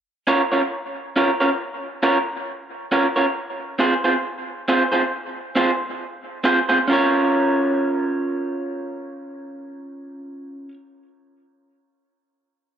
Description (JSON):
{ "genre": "reggae", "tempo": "68 BPM", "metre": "4/4", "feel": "swing 56% on 16ths", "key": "Bb minor", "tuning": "A4 = 440 Hz", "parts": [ { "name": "electric guitar through a small old amp", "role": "accompaniment", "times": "0.3-10.7 s", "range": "C4 to Db5", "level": "-19 LUFS", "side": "right 1 dB", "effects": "dub echo" } ], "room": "moderate spring reverb, RT60 1.6 s", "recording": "none", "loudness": "-18 LUFS", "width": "side -8 dB against mid", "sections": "0.0-6.9 A section; 6.9-10.4 B section", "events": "none", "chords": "0.0 Bbm; 3.4 Fm; 6.9 Bbm" }